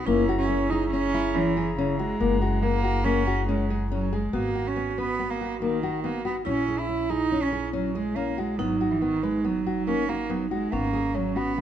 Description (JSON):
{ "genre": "contemporary instrumental, chamber music in an uneven meter", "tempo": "141 BPM", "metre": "5/4", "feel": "straight", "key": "unclear", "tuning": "A4 = 444 Hz", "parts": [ { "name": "clear cello", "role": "melody", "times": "0.0-11.6 s", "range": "C#3 to E4", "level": "-27 LUFS", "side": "right 4 dB", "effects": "none" }, { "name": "vibraphone with medium hard mallets", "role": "second line", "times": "0.0-11.6 s", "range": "C#4 to F#4", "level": "-30 LUFS", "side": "right 3 dB", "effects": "none" }, { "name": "nylon-string guitar", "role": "arpeggios", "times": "0.0-11.6 s", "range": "A#3 to B4", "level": "-29 LUFS", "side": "left 6 dB", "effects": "none" }, { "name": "upright bass", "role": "bass", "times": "0.0-11.6 s", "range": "F#1 to A#1", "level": "-32 LUFS", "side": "left 1 dB", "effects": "none" }, { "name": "clear woodwind section", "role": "sustained chords", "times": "0.1-4.3 s", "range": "G#4 to A#5", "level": "-35 LUFS", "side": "left 1 dB", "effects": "none" } ], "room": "light reverb", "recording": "dark, warm production", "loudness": "-23 LUFS", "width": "side -10 dB against mid", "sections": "0.0-4.3 A section; 4.3-11.6 B section", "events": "none", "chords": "0.1 F#9; 4.3 Bmaj7/G#; 6.5 A#m7b5; 8.6 G#m7; 10.7 F#sus24/G#" }